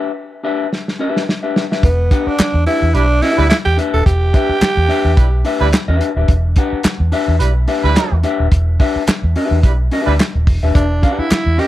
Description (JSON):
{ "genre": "funk", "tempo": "108 BPM", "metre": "4/4", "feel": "swing 56% on 16ths", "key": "E minor", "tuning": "A4 = 439 Hz", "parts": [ { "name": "mellow electric guitar", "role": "accompaniment", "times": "0.0-11.7 s", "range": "D4 to F#5", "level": "-20 LUFS", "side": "left 4 dB", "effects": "spring reverb" }, { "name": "warm soul drum kit", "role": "drums", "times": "0.7-11.7 s", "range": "handclaps, hi-hat, kick drum, snare drum", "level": "-16 LUFS", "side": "equal", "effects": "none" }, { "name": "growling tenor saxophone", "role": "melody", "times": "1.8-5.7, 10.7-11.7 s", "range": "B3 to A4", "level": "-17 LUFS", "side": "right 2 dB", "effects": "none" }, { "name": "vintage muted fingered electric bass", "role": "bass", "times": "1.8-11.6 s", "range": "D#1 to E2", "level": "-15 LUFS", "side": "equal", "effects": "none" }, { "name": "group handclap", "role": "percussion", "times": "2.4-11.5 s", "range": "none", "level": "-25 LUFS", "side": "equal", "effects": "none" }, { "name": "warm horn section", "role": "second line", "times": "2.9-10.1 s", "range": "G3 to B4", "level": "-20 LUFS", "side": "right 7 dB", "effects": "none" } ], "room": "light reverb", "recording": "dark, warm production", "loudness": "-12 LUFS", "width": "side -14 dB against mid", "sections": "0.0-1.8 A section; 1.8-11.7 B section", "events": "break 0.0-1.8; drum fill 0.7-1.8", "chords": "0.0 Em7" }